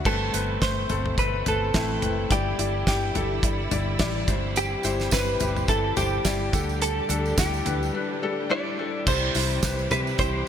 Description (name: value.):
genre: piano-driven pop.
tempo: 106 BPM.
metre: 4/4.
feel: swing 56% on 16ths.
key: unclear.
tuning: A4 = 440 Hz.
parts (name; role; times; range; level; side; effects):
felt-muted upright piano; accompaniment; 0.0-10.5 s; G2 to D5; -29 LUFS; left 5 dB; none.
rich studio string section; sustained chords; 0.0-10.5 s; A2 to G4; -34 LUFS; right 2 dB; none.
direct-recorded clean electric guitar; melody; 0.1-10.5 s; G4 to D5; -28 LUFS; right 1 dB; lush chorus, digital delay.
vintage muted fingered electric bass; bass; 0.1-10.4 s; F#1 to C3; -29 LUFS; right 1 dB; none.
damped 70s drum kit; drums; 0.1-10.3 s; crash cymbal, hi-hat, kick drum, snare drum, toms; -27 LUFS; right 1 dB; none.
tambourine; percussion; 4.6-10.3 s; none; -37 LUFS; right 10 dB; none.
room: moderate lush hall reverb, RT60 2.0 s.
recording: bright 1980s-style digital production.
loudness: -22 LUFS.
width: side -9 dB against mid.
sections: 0.1-9.1 A section; 9.1-10.5 B section.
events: break 7.9-9.1.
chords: 0.1 Amadd9/G; 2.3 Em7/G; 4.3 C/G; 6.5 Dsus4; 9.1 C.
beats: | 0.06 0.62 1.18 1.75 | 2.31 2.87 3.44 4.00 | 4.56 5.12 5.69 6.25 | 6.82 7.38 7.94 8.50 | 9.07 9.63 10.19.